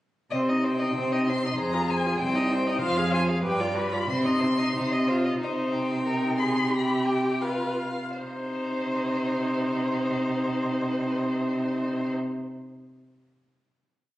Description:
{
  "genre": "quick classical-period movement for string quartet",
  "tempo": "76-97 BPM",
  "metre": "2/4",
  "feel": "straight",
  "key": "C minor",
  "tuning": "A4 = 439 Hz",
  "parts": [
    { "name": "warm violin", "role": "melody", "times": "0.3-12.1 s", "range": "C5 to C6", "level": "-32 LUFS", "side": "left 3 dB", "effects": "none" },
    { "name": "warm violin", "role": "second line", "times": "0.3-12.1 s", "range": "G4 to F5", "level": "-31 LUFS", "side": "left 1 dB", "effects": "none" },
    { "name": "rich viola", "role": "accompaniment", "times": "0.3-12.1 s", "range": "C4 to Ab4", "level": "-30 LUFS", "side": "equal", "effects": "none" },
    { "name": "rich cello", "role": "bass", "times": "0.3-12.1 s", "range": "C2 to C3", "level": "-27 LUFS", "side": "equal", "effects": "none" }
  ],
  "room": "wet recital hall reverb, RT60 1.4 s",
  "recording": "recorded on a phone in the room, club reverb",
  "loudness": "-24 LUFS",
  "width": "side -15 dB against mid",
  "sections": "0.3-5.4 A section; 5.4-8.2 coda; 8.2-11.3 final chord",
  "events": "slowing down 4.8-8.2",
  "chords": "0.3 Cm; 1.6 Fm; 2.2 Cm; 2.8 Fm; 3.5 G7; 4.1 Cm; 6.7 Csus4; 8.2 Cm",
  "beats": "| 0.32 0.96 | 1.58 2.21 | 2.83 3.46 | 4.11 4.77 | 5.42 6.07 | 6.72 7.43 | 8.21 9.00 | 9.78 10.57"
}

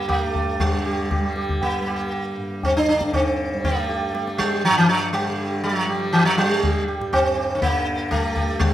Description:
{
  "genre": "indian classical, Hindustani",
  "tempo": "120 BPM",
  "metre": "4/4",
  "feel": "straight",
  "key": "G raga bhimpalasi",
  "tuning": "A4 = 440 Hz",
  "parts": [
    { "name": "sitar", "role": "melody", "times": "0.0-8.7 s", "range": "E3 to G4", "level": "-20 LUFS", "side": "right 1 dB", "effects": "none" },
    { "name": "tanpura", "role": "drone", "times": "0.0-8.7 s", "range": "G2 to G3", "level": "-29 LUFS", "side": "left 1 dB", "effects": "none" },
    { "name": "tabla", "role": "percussion", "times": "0.1-8.7 s", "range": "none", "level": "-26 LUFS", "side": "left 1 dB", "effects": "none" }
  ],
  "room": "moderate recital hall reverb, RT60 1.3 s",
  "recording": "minimal, uncompressed stereo recording",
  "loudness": "-19 LUFS",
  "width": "side -12 dB against mid",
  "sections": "0.6-8.7 A section",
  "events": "speeding up 0.0-8.7",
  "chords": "none",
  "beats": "0.09 | 0.60 1.11 1.62 2.13 | 2.63 3.14 3.64 4.14 | 4.64 5.14 5.64 6.14 | 6.63 7.13 7.62 8.11 | 8.60"
}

